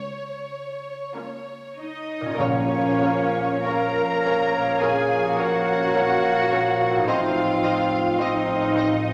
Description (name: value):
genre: classical, slow romantic movement for symphony orchestra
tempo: 45-54 BPM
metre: 4/4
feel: rubato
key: Bb minor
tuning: A4 = 440 Hz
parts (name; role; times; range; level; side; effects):
- muted symphonic violin section; melody; 0.0-8.8 s; Db5 to Eb5; -37 LUFS; equal; none
- concert harp; arpeggios; 0.0-9.1 s; A2 to C5; -37 LUFS; equal; none
- muted symphonic cello section; bass; 0.0-9.1 s; Db2 to Bb4; -28 LUFS; equal; none
- muted symphonic violin section; second line; 1.1-9.1 s; F4 to Bb5; -33 LUFS; equal; none
- muted symphonic viola section; accompaniment; 1.2-8.8 s; Bb3 to C5; -35 LUFS; equal; none
- dark clarinet; second line; 2.4-9.0 s; Db5 to Eb5; -32 LUFS; equal; none
- silver concert flute; second line; 2.4-9.0 s; F5; -32 LUFS; equal; none
- mellow bassoon; accompaniment; 2.4-9.0 s; Bb3 to C4; -27 LUFS; equal; none
- mellow French horn section; sustained chords; 2.4-9.1 s; F3 to Eb4; -32 LUFS; equal; none
- muted symphonic double bass section; bass; 2.4-9.1 s; A1 to Bb1; -35 LUFS; equal; none
- timpani; percussion; 2.4-4.2 s; Bb2; -34 LUFS; equal; none
room: wet scoring stage reverb, RT60 1.5 s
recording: none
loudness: -22 LUFS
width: mono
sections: 0.0-2.4 A section; 2.4-9.1 A section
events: none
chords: 0.0 Bbm/Db; 2.4 Bbm; 7.1 F7/A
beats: 1.16 | 2.40 3.66 4.81 5.95 | 7.08 8.19